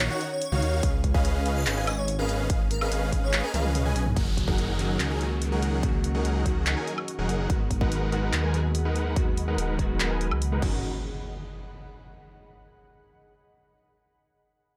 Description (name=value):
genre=future bass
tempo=144 BPM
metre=4/4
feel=half-time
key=F# major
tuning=A4 = 440 Hz
part: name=airy dreamy lead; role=arpeggios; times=0.0-4.0 s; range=E#5 to G#5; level=-42 LUFS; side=equal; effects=none
part: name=supersaw chords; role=riff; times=0.0-10.8 s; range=D#3 to G#5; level=-34 LUFS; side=equal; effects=sidechain pumping, low-pass filter
part: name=detuned saw bass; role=bass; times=0.0-10.8 s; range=D#1 to D#2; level=-30 LUFS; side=equal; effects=chorus, sidechain pumping
part: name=big-room dance drum kit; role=drums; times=0.0-10.7 s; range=crash cymbal, handclaps, hi-hat, toms, woodblock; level=-34 LUFS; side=equal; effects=none
part: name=airy dreamy lead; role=melody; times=0.1-3.6 s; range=A#4 to E#5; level=-35 LUFS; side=equal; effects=chorus, sidechain pumping, digital delay
part: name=electronic kick drum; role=drums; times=0.8-10.7 s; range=none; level=-29 LUFS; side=equal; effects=none
part: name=glassy digital keys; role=accompaniment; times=4.1-10.9 s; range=D#3 to G#4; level=-36 LUFS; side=equal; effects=chorus, sidechain pumping, tape echo
part: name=ethereal airy pad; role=sustained chords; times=5.1-10.8 s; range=G#4 to C#6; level=-46 LUFS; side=equal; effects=ensemble chorus, built-in reverb, sidechain pumping
part: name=downlifter and impact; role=sound effects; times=4.2-7.5, 10.7-12.3 s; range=none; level=-42 LUFS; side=equal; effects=none
room=light reverb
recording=none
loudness=-26 LUFS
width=mono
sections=0.0-4.2 A section; 4.2-10.8 B section; 10.8-12.5 C section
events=drop 0.0-4.2; drum fill 3.5-4.2; filter sweep on detuned saw bass 4.2-10.8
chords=0.0 D#m7; 0.8 C#7; 4.2 F#6; 7.5 G#m7; 10.6 F#6; 10.8 N.C.